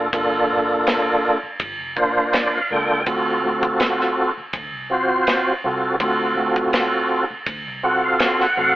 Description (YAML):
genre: straight-eighth soul blues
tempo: 82 BPM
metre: 4/4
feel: swing 53% on 16ths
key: unclear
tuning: A4 = 440 Hz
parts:
  - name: tonewheel organ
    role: accompaniment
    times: 0.0-8.8 s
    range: Bb3 to G5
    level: -18 LUFS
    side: equal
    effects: slow rotary speaker, overdrive, chorus vibrato
  - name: vintage muted fingered electric bass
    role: bass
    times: 0.0-8.8 s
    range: F1 to D2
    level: -36 LUFS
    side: equal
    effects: none
  - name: tight funk drum kit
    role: drums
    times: 0.1-8.5 s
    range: kick drum, ride cymbal, snare drum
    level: -24 LUFS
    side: equal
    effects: none
room: moderate studio reverb, RT60 0.7 s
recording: band playing live in one room, telephone sound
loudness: -17 LUFS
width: side -15 dB against mid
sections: 0.0-8.8 A section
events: tonewheel organ fill 2.0-3.1, 7.5-8.8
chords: 0.0 Gm7; 3.1 D7#9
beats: | 0.14 0.87 1.60 2.34 | 3.07 3.81 4.54 5.27 | 6.01 6.74 7.47 8.21